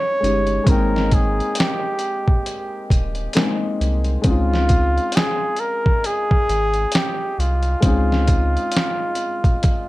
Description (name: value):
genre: lo-fi hip hop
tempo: 67 BPM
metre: 4/4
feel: swing 60% on 16ths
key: Db lydian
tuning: A4 = 440 Hz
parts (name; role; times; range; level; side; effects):
- mellow flugelhorn; melody; 0.0-9.9 s; F4 to Db5; -22 LUFS; equal; tape echo, plate reverb
- dark upright piano; accompaniment; 0.0-9.9 s; Ab3 to G5; -25 LUFS; left 3 dB; plate reverb
- soft dub sub bass; bass; 0.2-8.6 s; Eb1 to Db2; -21 LUFS; equal; none
- dusty soul sampler-style drum kit; drums; 0.2-9.9 s; hi-hat, kick drum, snare drum; -19 LUFS; equal; none
room: light reverb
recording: none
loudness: -17 LUFS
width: side -18 dB against mid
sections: 0.0-9.9 A section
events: none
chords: 0.0 Dbadd9; 0.7 Abmaj9; 4.2 Dbmaj9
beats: | 0.67 1.56 2.46 3.35 | 4.25 5.14 6.04 6.93 | 7.83 8.73 9.62